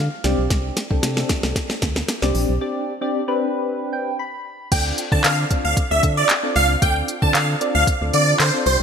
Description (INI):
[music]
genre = dance-pop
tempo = 114 BPM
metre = 4/4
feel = straight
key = unclear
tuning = A4 = 440 Hz
[part]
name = soft electric-piano-like synth keys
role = accompaniment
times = 0.0-8.8 s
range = C4 to B5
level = -24 LUFS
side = equal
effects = chorus, phaser, sidechain pumping
[part]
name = organ-like FM bass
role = bass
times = 0.0-8.8 s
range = Bb1 to D3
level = -22 LUFS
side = equal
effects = sidechain pumping
[part]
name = smooth R&B drum kit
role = drums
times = 0.2-8.8 s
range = crash cymbal, handclaps, hi-hat, kick drum, snare drum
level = -21 LUFS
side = equal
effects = none
[part]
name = supersaw chords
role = melody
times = 4.7-8.8 s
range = C5 to A5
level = -19 LUFS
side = right 1 dB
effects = analog chorus, sidechain pumping
[sound]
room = moderate lush hall reverb, RT60 2.0 s, digital ambience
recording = bright 1980s-style digital production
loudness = -17 LUFS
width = side -7 dB against mid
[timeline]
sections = 0.0-4.7 A section; 4.7-8.8 B section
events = build-up 0.0-4.7; drum fill 0.0-2.6; synth keys fill 0.0-0.5, 3.7-4.7; break 2.6-4.7; drop 4.7-8.8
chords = 0.2 Csus2; 4.7 Dm7